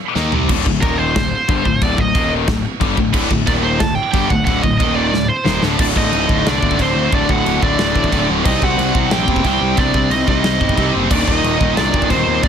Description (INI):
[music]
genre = heavy metal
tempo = 181 BPM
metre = 4/4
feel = straight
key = unclear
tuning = A4 = 439 Hz
[part]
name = heavy high-gain guitar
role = riff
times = 0.2-12.5 s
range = D2 to Eb4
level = -21 LUFS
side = left 14 dB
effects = distortion
[part]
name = high-gain distorted guitar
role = riff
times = 0.2-0.5, 3.1-12.5 s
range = D2 to Eb4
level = -22 LUFS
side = right 13 dB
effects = distortion
[part]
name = fuzz picked electric bass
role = bass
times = 0.2-12.5 s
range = D1 to Eb2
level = -21 LUFS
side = equal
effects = overdrive
[part]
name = modern studio drum kit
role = drums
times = 0.2-12.5 s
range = china cymbal, crash cymbal, kick drum, snare drum, toms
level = -19 LUFS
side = equal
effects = none
[part]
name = tight distorted guitar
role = riff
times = 0.5-12.5 s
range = D2 to C4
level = -25 LUFS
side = equal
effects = distortion
[part]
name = high-gain lead guitar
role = melody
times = 0.8-12.5 s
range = Bb4 to A5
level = -20 LUFS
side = right 3 dB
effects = distortion
[part]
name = high-gain lead guitar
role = second line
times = 5.8-12.5 s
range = C4 to G4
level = -26 LUFS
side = right 2 dB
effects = distortion
[sound]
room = little or no reverb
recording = dense, heavily limited modern master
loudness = -13 LUFS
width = side -8 dB against mid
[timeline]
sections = 0.5-5.8 A section; 5.8-12.5 B section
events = drum fill 0.2-0.5, 5.1-5.8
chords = 0.5 D5; 0.8 Eb5; 1.2 D5; 2.1 Eb5; 2.5 D5; 3.5 Eb5; 3.8 D5; 4.8 Eb5; 5.1 D5; 5.8 D; 8.5 Cm; 11.1 Eb5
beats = 0.16 | 0.49 0.82 1.15 1.49 | 1.82 2.15 2.48 2.81 | 3.14 3.47 3.81 4.14 | 4.47 4.80 5.13 5.46 | 5.79 6.13 6.46 6.79 | 7.12 7.46 7.79 8.12 | 8.45 8.78 9.12 9.45 | 9.78 10.11 10.44 10.78 | 11.11 11.44 11.77 12.10 | 12.43